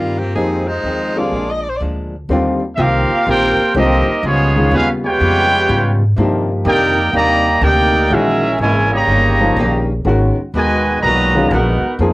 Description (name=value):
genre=jazz, big band swing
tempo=124 BPM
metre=4/4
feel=swing 66% on 8ths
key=Eb major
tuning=A4 = 441 Hz
part: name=clear saxophone section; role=melody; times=0.0-1.8 s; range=F3 to Eb5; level=-20 LUFS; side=equal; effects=cassette tape
part: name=archtop guitar, miked and amplified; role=accompaniment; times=0.0-12.1 s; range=F2 to Bb4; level=-22 LUFS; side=left 1 dB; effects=none
part: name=upright bass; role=bass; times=0.0-12.1 s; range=G1 to Ab2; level=-18 LUFS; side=equal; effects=none
part: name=warm baby grand piano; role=accompaniment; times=0.4-12.1 s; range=D3 to Ab4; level=-18 LUFS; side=left 1 dB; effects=none
part: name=clear trombone section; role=second line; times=1.2-12.0 s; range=Bb2 to G4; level=-19 LUFS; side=right 1 dB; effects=none
part: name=clear trumpet section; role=melody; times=2.8-12.0 s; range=Cb4 to Bb5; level=-15 LUFS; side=right 1 dB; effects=cassette tape
room=moderate small room reverb, RT60 0.6 s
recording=home recording on cassette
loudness=-12 LUFS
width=side -20 dB against mid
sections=0.0-2.3 A section; 2.3-12.1 B section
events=none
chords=0.3 Fm7; 1.3 Bb7; 2.3 Eb69; 4.2 Db7#11; 6.2 Cm9; 8.1 Bbm7b5; 9.1 Eb7; 10.1 Abm9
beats=| 0.35 0.84 1.32 1.81 | 2.29 2.78 3.27 3.75 | 4.24 4.72 5.21 5.69 | 6.18 6.66 7.15 7.63 | 8.12 8.60 9.09 9.57 | 10.06 10.54 11.03 11.51 | 12.00